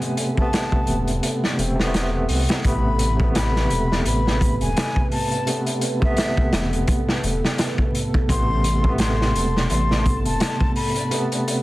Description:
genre	trip hop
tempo	85 BPM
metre	4/4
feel	swing 56% on 16ths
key	A minor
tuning	A4 = 441 Hz
part	barky tine electric piano	accompaniment	0.0-11.6 s	C3 to C4	-24 LUFS	equal	tremolo, tape echo
part	dark analog pad	sustained chords	0.1-11.6 s	A4 to C6	-31 LUFS	right 2 dB	chorus
part	raw garage drum kit	drums	0.0-11.6 s	hi-hat, kick drum, snare drum	-22 LUFS	equal	none
part	breathy mellow silver concert flute	melody	0.4-11.3 s	E5 to C6	-28 LUFS	left 2 dB	tape echo
part	dark detuned saw bass	bass	0.9-10.4 s	E1 to C2	-23 LUFS	equal	none
room	small room ambience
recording	dense, heavily limited modern master, vinyl crackle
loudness	-18 LUFS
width	side -18 dB against mid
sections	0.0-2.6 A section; 2.6-11.6 B section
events	kick drops out 1.2-2.6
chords	0.0 Amadd9

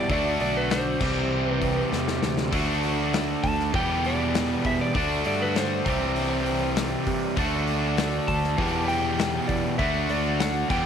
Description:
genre	classic rock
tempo	99 BPM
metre	4/4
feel	straight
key	unclear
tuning	A4 = 440 Hz
part	electric slide guitar	melody	0.0-10.9 s	B4 to A5	-29 LUFS	equal	slapback echo
part	crunchy overdriven guitar	riff	0.0-10.9 s	E2 to G4	-25 LUFS	equal	none
part	modern bright picked electric bass	bass	0.1-10.9 s	B1 to C3	-30 LUFS	right 1 dB	none
part	big rock drum kit	drums	0.1-10.8 s	crash cymbal, hi-hat, kick drum, snare drum	-30 LUFS	left 2 dB	none
room	light reverb, studio reverb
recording	1960s-style stereo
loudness	-22 LUFS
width	side -8 dB against mid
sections	0.0-10.9 A section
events	drum fill 1.9-2.5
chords	0.1 D; 1.0 C; 2.5 D; 3.7 Em; 5.0 D; 5.9 C; 7.4 D; 8.6 Em; 9.8 D

